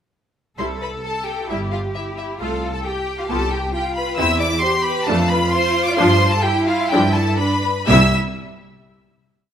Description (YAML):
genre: quick classical-period movement for string orchestra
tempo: 121-136 BPM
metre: 4/4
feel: rubato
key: C major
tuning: A4 = 440 Hz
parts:
  - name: rich symphonic violin section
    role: melody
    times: 0.6-8.1 s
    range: E5 to E6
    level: -22 LUFS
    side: left 1 dB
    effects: none
  - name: rich studio violin section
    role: second line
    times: 0.6-8.2 s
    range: E4 to E5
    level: -25 LUFS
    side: left 2 dB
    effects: none
  - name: rich studio viola section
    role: accompaniment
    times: 0.6-8.2 s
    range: F3 to F4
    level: -21 LUFS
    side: equal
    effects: none
  - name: rich symphonic cello section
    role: bass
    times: 0.6-8.2 s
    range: C3 to A4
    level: -23 LUFS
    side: right 1 dB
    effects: none
  - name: rich symphonic double bass section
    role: bass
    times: 0.6-8.2 s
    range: G1 to G2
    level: -23 LUFS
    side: right 1 dB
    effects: none
room: light reverb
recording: close, detailed microphones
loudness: -16 LUFS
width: side -9 dB against mid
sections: 0.6-7.9 A section; 7.9-9.5 final chord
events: none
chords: 0.6 C; 2.4 F/C; 3.3 G7/C; 4.2 C/E; 5.1 Dm/F; 6.0 G5; 7.9 C